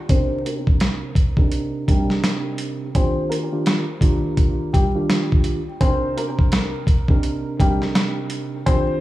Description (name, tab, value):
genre	hip hop, boom-bap hip-hop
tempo	84 BPM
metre	4/4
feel	swing 61% on 16ths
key	C minor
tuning	A4 = 440 Hz
part	warm upright piano	melody	0.1-9.0 s	G3 to C5	-27 LUFS	left 2 dB	high-pass filter, low-pass filter, analog delay
part	tine electric piano	accompaniment	0.1-9.0 s	C3 to Bb4	-24 LUFS	right 2 dB	overdrive, medium stereo tremolo, cassette tape, high-pass filter, low-pass filter, analog delay
part	boom bap sampler-style drum kit	drums	0.1-8.9 s	hi-hat, kick drum, snare drum	-18 LUFS	equal	none
room	little or no reverb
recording	echo-heavy mix, vinyl crackle, studio reverb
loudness	-18 LUFS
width	side -16 dB against mid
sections	0.1-9.0 A section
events	filter sweep 0.1-9.0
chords	0.1 Cm7; 3.0 Ebmaj7; 5.8 Cm7